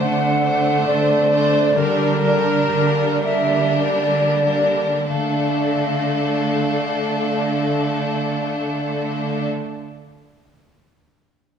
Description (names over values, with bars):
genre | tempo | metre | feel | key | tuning
classical | 44-71 BPM | 3/4 | rubato | D minor | A4 = 439 Hz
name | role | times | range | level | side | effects
clear chamber violin section | melody | 0.0-9.5 s | A4 to C5 | -28 LUFS | left 3 dB | none
clear chamber violin section | second line | 0.0-9.5 s | D4 | -25 LUFS | left 2 dB | none
silver concert flute | second line | 0.0-9.5 s | Bb4 to F#5 | -21 LUFS | equal | none
rich studio viola section | accompaniment | 0.0-9.5 s | G3 to A3 | -26 LUFS | right 1 dB | none
concert harp | arpeggios | 0.0-10.1 s | D3 to D5 | -28 LUFS | left 4 dB | none
rich chamber cello section | bass | 0.0-9.5 s | D3 | -23 LUFS | right 4 dB | none
room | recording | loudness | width
wet scoring stage reverb, RT60 1.6 s | small room ambience | -17 LUFS | side -7 dB against mid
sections
0.0-5.1 A section; 5.1-8.7 B section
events
slowing down 0.0-5.1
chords
0.0 D7; 1.8 Gm/D; 5.1 Dm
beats
0.00 0.86 | 1.75 2.71 3.81 | 5.08 6.28 7.51